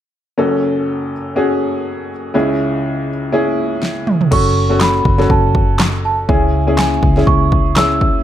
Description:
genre	piano-driven pop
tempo	122 BPM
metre	4/4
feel	swing 56% on 16ths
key	F# minor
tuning	A4 = 441 Hz
part	clear upright piano	accompaniment	0.4-8.2 s	F#1 to A4	-16 LUFS	left 1 dB	none
part	deep house drum kit	drums	3.8-8.1 s	crash cymbal, handclaps, kick drum, snare drum, toms	-16 LUFS	equal	overdrive
part	celesta	melody	4.3-8.1 s	G#5 to E6	-18 LUFS	right 3 dB	none
part	vintage muted fingered electric bass	bass	4.3-8.2 s	F#1 to C#2	-17 LUFS	equal	none
room	light reverb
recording	none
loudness	-13 LUFS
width	side -11 dB against mid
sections	0.4-4.3 A section; 4.3-8.2 B section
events	drum fill 3.8-4.3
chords	0.4 F#m; 2.3 C#m; 4.3 F#m; 6.3 C#m

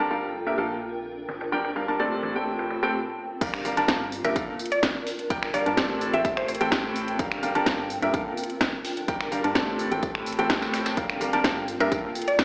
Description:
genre	piano house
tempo	127 BPM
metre	4/4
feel	straight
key	G minor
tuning	A4 = 441 Hz
part	clear upright piano	riff	0.0-12.1 s	A2 to A5	-26 LUFS	equal	sidechain pumping, tape echo
part	organ-like FM bass	bass	0.0-12.1 s	G1 to G2	-38 LUFS	equal	sidechain pumping
part	granular cloud pad	texture	0.0-12.4 s	C4 to G5	-34 LUFS	equal	built-in reverb, sidechain pumping
part	dusty soul sampler-style drum kit	drums	0.1-12.4 s	hi-hat, snare drum, tambourine	-35 LUFS	equal	sidechain pumping on perc, high-pass filter on perc, low-pass filter on perc, studio reverb, high-pass filter on snare, low-pass filter on snare, sidechain pumping on hats, high-pass filter on hats, low-pass filter on hats
part	electronic kick drum	drums	3.4-12.4 s	none	-30 LUFS	equal	studio reverb
part	house drum kit	drums	3.4-12.4 s	crash cymbal, finger snaps, hi-hat, snare drum	-28 LUFS	equal	studio reverb
part	mallet-like synth pluck	melody	4.2-6.6, 11.8-12.4 s	Bb4 to E5	-27 LUFS	equal	chorus, tape echo
room	moderate plate reverb, RT60 1.4 s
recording	played on a big sound system in a bare room, stone room reverb, AM radio sound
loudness	-23 LUFS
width	side -34 dB against mid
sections	0.0-3.4 A section; 3.4-12.4 B section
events	break 2.9-3.4; drop 3.4-12.4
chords	0.0 Gm7; 0.6 Bbmaj7; 1.3 Gm7; 2.2 Am7; 3.4 Gm7; 4.4 Bbmaj7; 5.1 Gm7; 6.0 Am7; 7.2 Gm7; 8.1 Bbmaj7; 8.8 Gm7; 9.8 Am7; 11.0 Gm7; 11.9 Bbmaj7

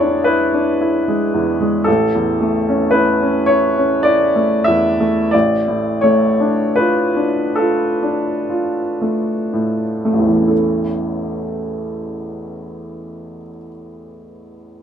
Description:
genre	classical, romantic nocturne for solo piano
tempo	19-38 BPM (dotted quarters)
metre	6/8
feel	rubato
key	A major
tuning	A4 = 441 Hz
part	clear upright piano	solo	0.0-14.8 s	A1 to E5	-15 LUFS	equal	none
room	little or no reverb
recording	close, detailed microphones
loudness	-14 LUFS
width	side -8 dB against mid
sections	0.0-10.5 A section; 10.5-14.8 B section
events	slowing down 0.3-10.5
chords	0.0 E7/A; 1.9 A; 5.3 Dm/A; 10.5 A

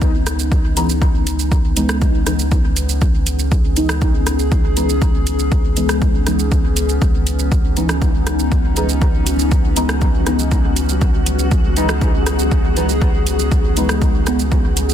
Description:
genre	dub techno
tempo	120 BPM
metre	4/4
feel	straight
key	C# minor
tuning	A4 = 444 Hz
part	warbly tape-like pad	sustained chords	0.0-14.9 s	E3 to G#4	-23 LUFS	left 2 dB	chorus, built-in reverb, phaser, sidechain pumping
part	soft dub sub bass	bass	0.0-14.9 s	C#2	-20 LUFS	equal	tube saturation, sidechain pumping
part	deep house drum kit	drums	0.0-14.9 s	hi-hat, rim click, shaker	-25 LUFS	right 2 dB	overdrive, soft clipping on snare, dub echo
part	electronic kick drum	drums	0.0-14.6 s	none	-17 LUFS	equal	overdrive
part	deep mellow chord stab	stabs	0.8-14.4 s	E3 to D#4	-23 LUFS	equal	chorus, phaser, sidechain pumping, dub echo
part	flickering grainy texture	texture	7.7-14.9 s	F#3 to F#4	-28 LUFS	equal	built-in reverb, sidechain pumping
room	little or no reverb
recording	dense, heavily limited modern master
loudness	-14 LUFS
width	side -10 dB against mid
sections	0.0-14.9 A section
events	none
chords	0.0 C#m9

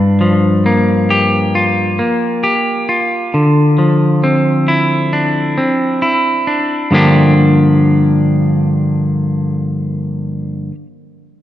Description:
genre	rock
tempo	67 BPM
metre	4/4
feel	straight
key	G dorian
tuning	A4 = 444 Hz
part	clean electric guitar	arpeggios	0.0-10.7 s	G2 to G4	-11 LUFS	equal	slapback echo
room	moderate plate reverb, RT60 3.0 s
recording	dark, warm production, nothing above 10.7 kHz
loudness	-11 LUFS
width	side -12 dB against mid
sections	0.0-6.9 A section; 6.9-10.5 B section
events	none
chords	0.0 Gm7; 3.3 Dm9; 6.9 Gm7

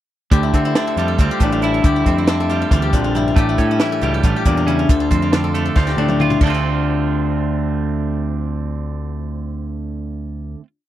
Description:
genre	math rock and midwest emo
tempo	276 BPM (eighths)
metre	7/8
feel	straight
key	D minor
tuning	A4 = 440 Hz
part	twelve-string electric guitar	accompaniment	0.3-10.7 s	D2 to F4	-22 LUFS	right 8 dB	none
part	steel-string zither	arpeggios	0.3-10.7 s	D4 to D5	-21 LUFS	left 6 dB	none
part	growling picked electric bass	bass	0.3-10.5 s	A1 to D3	-21 LUFS	equal	overdrive
part	compact cocktail drum kit	drums	0.3-6.5 s	crash cymbal, hi-hat, kick drum, snare drum, toms	-16 LUFS	equal	none
room	little or no reverb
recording	dry, close 1970s-style studio recording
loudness	-15 LUFS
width	side -12 dB against mid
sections	0.3-6.4 A section; 6.4-9.5 final chord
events	drum fill 5.8-6.4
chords	0.3 Dm11; 3.4 A7b9b13; 4.9 Dm7

